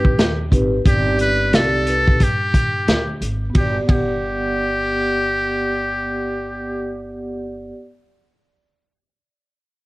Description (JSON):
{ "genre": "hip hop, jazz-hop", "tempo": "89 BPM", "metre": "4/4", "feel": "swing 63% on 16ths", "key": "G major", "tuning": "A4 = 440 Hz", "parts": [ { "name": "trumpet with metal mute", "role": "melody", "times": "0.0-7.0 s", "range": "G4 to B4", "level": "-21 LUFS", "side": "left 1 dB", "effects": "cassette tape" }, { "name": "vibraphone with soft mallets", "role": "accompaniment", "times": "0.0-7.7 s", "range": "B3 to F#5", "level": "-23 LUFS", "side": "equal", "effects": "none" }, { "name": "upright bass", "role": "bass", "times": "0.0-7.7 s", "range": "G1 to G2", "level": "-26 LUFS", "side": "equal", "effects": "none" }, { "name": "vintage drum kit", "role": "drums", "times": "0.0-4.1 s", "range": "hi-hat, kick drum, ride cymbal, snare drum", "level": "-17 LUFS", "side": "equal", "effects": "cassette tape" } ], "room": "light reverb, small room ambience", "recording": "home recording on cassette", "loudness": "-16 LUFS", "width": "side -20 dB against mid", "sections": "0.0-3.6 A section; 3.6-6.2 B section", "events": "none", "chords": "0.0 Cmadd9/G; 3.6 Gmaj7" }